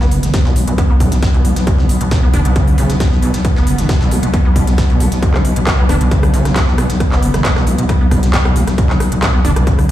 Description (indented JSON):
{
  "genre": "driving peak-time techno",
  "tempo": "135 BPM",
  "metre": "4/4",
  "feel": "straight",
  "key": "B minor",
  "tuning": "A4 = 441 Hz",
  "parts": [
    { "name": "overdriven acid bass", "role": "riff", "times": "0.0-9.9 s", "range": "B1 to D4", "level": "-20 LUFS", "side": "equal", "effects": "distortion, analog chorus, sidechain pumping, tape echo" },
    { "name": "growling FM bass", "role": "bass", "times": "0.0-9.9 s", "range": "F#1 to B1", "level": "-16 LUFS", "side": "equal", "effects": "sidechain pumping" },
    { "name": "swarming drone", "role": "drone", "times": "0.0-9.9 s", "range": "B2 to B3", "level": "-22 LUFS", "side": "equal", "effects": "built-in reverb, sidechain pumping" },
    { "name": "breakbeat sampler-style drum kit", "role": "drums", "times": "0.0-9.9 s", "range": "hi-hat, snare drum", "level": "-29 LUFS", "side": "equal", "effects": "overdrive, high-pass filter on snare, small room ambience, sidechain pumping on hats, high-pass filter on hats, high-pass filter on room" },
    { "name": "techno drum kit", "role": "drums", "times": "0.1-9.9 s", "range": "handclaps, hi-hat, rim click", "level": "-22 LUFS", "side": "equal", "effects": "overdrive, sidechain pumping on hats, small room ambience" },
    { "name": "electronic kick drum", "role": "drums", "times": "0.3-9.8 s", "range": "none", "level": "-13 LUFS", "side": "equal", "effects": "overdrive, small room ambience" }
  ],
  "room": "light reverb, digital ambience",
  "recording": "played on a big sound system in a bare room, large studio reverb",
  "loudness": "-11 LUFS",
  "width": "side -13 dB against mid",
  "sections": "0.0-9.9 A section",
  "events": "none",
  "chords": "0.0 Bm",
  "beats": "0.34 0.78 1.23 | 1.67 2.12 2.56 3.00 | 3.45 3.89 4.34 4.78 | 5.23 5.67 6.12 6.56 | 7.00 7.45 7.89 8.34 | 8.78 9.23 9.67"
}